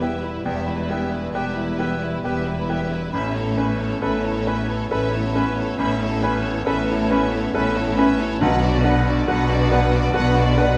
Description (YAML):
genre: cinematic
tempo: 68 BPM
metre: 3/4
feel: rubato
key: unclear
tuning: A4 = 440 Hz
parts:
  - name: rich studio violin section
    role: melody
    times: 0.0-10.8 s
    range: B4 to F#5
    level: -33 LUFS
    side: equal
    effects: none
  - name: mellow clarinet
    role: second line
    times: 0.0-10.7 s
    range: B3 to D4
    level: -31 LUFS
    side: equal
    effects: none
  - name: rich studio violin section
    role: second line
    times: 0.0-10.8 s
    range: E4 to B4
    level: -34 LUFS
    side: equal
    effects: none
  - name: silver concert flute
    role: second line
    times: 0.0-10.7 s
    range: F#5 to B5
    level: -33 LUFS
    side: equal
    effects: none
  - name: bright grand piano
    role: accompaniment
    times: 0.0-10.8 s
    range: A1 to B4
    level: -28 LUFS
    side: equal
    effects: none
  - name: rich studio viola section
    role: accompaniment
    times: 0.0-10.8 s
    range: B3 to E4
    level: -34 LUFS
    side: equal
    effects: none
  - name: mellow French horn section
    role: sustained chords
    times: 0.0-10.8 s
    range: G3 to D4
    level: -30 LUFS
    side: equal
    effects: none
  - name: rich studio cello section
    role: bass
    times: 0.0-10.8 s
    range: E2 to B2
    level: -28 LUFS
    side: equal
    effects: none
  - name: rich studio double bass section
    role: bass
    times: 0.0-10.8 s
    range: E1 to B1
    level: -28 LUFS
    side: equal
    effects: none
  - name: timpani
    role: percussion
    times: 8.4-9.7 s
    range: B2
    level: -31 LUFS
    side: equal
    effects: none
room: wet recital hall reverb, RT60 1.5 s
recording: none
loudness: -21 LUFS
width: mono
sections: 0.0-10.8 A section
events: none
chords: 0.0 Em; 3.1 Aadd9; 8.4 Bm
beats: | 0.45 1.35 2.25 | 3.14 4.03 4.92 | 5.79 6.67 7.55 | 8.42 9.29 10.15